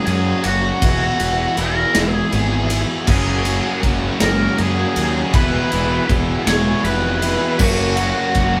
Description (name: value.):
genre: quiet-loud alternative rock.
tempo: 53 BPM (dotted quarters).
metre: 6/8.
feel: straight.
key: E lydian.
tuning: A4 = 440 Hz.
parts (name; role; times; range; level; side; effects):
octave-fuzz lead guitar; melody; 0.0-8.6 s; F#4 to C#6; -24 LUFS; equal; distortion.
mellow tonewheel organ; sustained chords; 0.0-8.6 s; F#4 to G#5; -34 LUFS; equal; none.
high-gain distorted guitar; riff; 0.0-8.6 s; E3 to G#4; -28 LUFS; equal; distortion.
thick fuzz guitar; riff; 0.0-8.6 s; E3 to G#4; -28 LUFS; equal; distortion.
fuzz fingered electric bass; bass; 0.1-8.6 s; E1 to F#2; -24 LUFS; equal; overdrive.
big rock drum kit; drums; 0.1-8.5 s; crash cymbal, kick drum, ride cymbal, snare drum; -23 LUFS; equal; none.
tight distorted guitar; riff; 3.1-8.6 s; F#2 to F#4; -29 LUFS; equal; distortion.
room: light reverb.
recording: band playing live in one room.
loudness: -18 LUFS.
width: mono.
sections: 0.0-8.6 A section.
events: none.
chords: 0.0 F#add9; 0.8 Eadd9; 3.1 F#add9; 5.3 Eadd9; 7.6 F#add9.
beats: | 0.83 1.96 | 3.08 4.21 | 5.34 6.47 | 7.61.